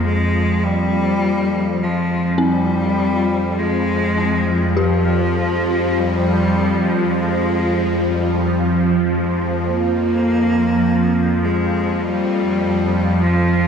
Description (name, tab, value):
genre	dark ambient drone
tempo	free time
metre	none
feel	none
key	F minor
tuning	A4 = 440 Hz
part	clear cello	melody	0.0-13.7 s	F3 to Bb3	-20 LUFS	equal	ping-pong delay
part	bowed-like drone	drone	0.0-13.7 s	F2 to F3	-17 LUFS	equal	built-in reverb, phaser
part	dark detuned synth bell	arpeggios	2.4-13.7 s	C4 to G4	-25 LUFS	left 4 dB	chorus, phaser, ping-pong delay
room	moderate plate reverb, RT60 2.4 s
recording	dreamy mix soaked in reverb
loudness	-15 LUFS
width	side -6 dB against mid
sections	0.0-13.7 A section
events	none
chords	0.0 Fmadd9; 9.6 Bb5/F